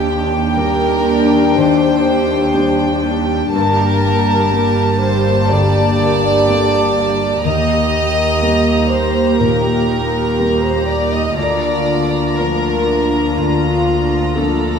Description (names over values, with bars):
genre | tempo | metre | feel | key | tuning
cinematic, emotional film score for orchestra | 61 BPM | 4/4 | rubato | G minor | A4 = 441 Hz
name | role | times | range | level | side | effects
mellow French horn | melody | 0.0-14.8 s | F4 to Eb5 | -22 LUFS | equal | none
warm symphonic violin section | melody | 0.0-14.8 s | G5 to Bb5 | -22 LUFS | equal | none
warm symphonic violin section | second line | 0.0-14.8 s | F4 to Eb5 | -22 LUFS | equal | none
dark symphonic viola section | accompaniment | 0.0-14.8 s | Bb3 to G4 | -22 LUFS | right 3 dB | none
felt-muted upright piano | accompaniment | 0.0-14.8 s | D2 to Bb4 | -23 LUFS | left 3 dB | none
warm French horn section | sustained chords | 0.0-14.8 s | Bb3 to G4 | -21 LUFS | left 3 dB | none
concert harp | arpeggios | 0.0-14.8 s | G2 to G4 | -24 LUFS | left 11 dB | none
dark symphonic double bass section | bass | 0.0-14.8 s | G1 to Eb2 | -23 LUFS | right 3 dB | none
rich symphonic cello section | bass | 0.0-14.8 s | D2 to G2 | -21 LUFS | right 5 dB | none
room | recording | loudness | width
moderate scoring stage reverb, RT60 1.7 s | minimal, uncompressed stereo recording | -12 LUFS | side -6 dB against mid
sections
0.0-14.8 A section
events
none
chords
0.0 Cmadd9/Eb; 3.5 Gmadd9; 7.5 Eb; 11.4 Bb/D